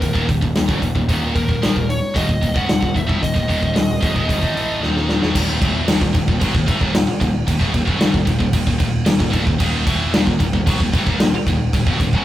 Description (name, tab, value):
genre	heavy metal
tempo	113 BPM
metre	4/4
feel	straight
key	Eb phrygian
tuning	A4 = 442 Hz
part	high-gain lead guitar	melody	0.0-4.8 s	Bb4 to Gb5	-24 LUFS	equal	distortion
part	scooped high-gain guitar	riff	0.0-12.2 s	Eb2 to A3	-21 LUFS	equal	distortion
part	growling picked electric bass	bass	0.0-12.2 s	Eb1 to Cb2	-26 LUFS	equal	overdrive
part	big rock drum kit	drums	0.0-12.2 s	crash cymbal, hi-hat, kick drum, snare drum	-18 LUFS	equal	none
room	light reverb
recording	rough rehearsal-room recording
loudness	-15 LUFS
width	side -13 dB against mid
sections	0.0-5.4 A section; 5.4-12.2 B section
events	drum fill 4.8-5.4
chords	0.0 Eb5; 5.4 Ebm